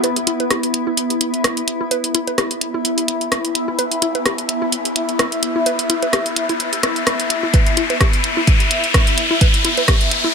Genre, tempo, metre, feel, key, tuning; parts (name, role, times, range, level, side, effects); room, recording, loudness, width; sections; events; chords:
minimal techno; 128 BPM; 4/4; swing 55% on 16ths; A4 = 440 Hz
mallet-like synth pluck; riff; 0.0-10.3 s; E4 to B4; -24 LUFS; right 1 dB; chorus, sidechain pumping, tape echo
garage drum kit; drums; 0.0-10.2 s; hi-hat, rim click; -18 LUFS; right 1 dB; low-pass filter on hats, low-pass filter on snare, low-pass filter on room
riser; sound effects; 1.9-10.3 s; -22 LUFS; left 3 dB
granular cloud pad; texture; 0.0-10.3 s; B3 to B5; -21 LUFS; left 1 dB; built-in reverb, sidechain pumping
electronic kick drum; drums; 7.5-10.0 s; -15 LUFS; equal
wet studio reverb, RT60 0.6 s; -15 LUFS; side -6 dB against mid
0.0-10.3 A section
build-up 0.0-10.3; riser 1.9-10.3
0.0 E5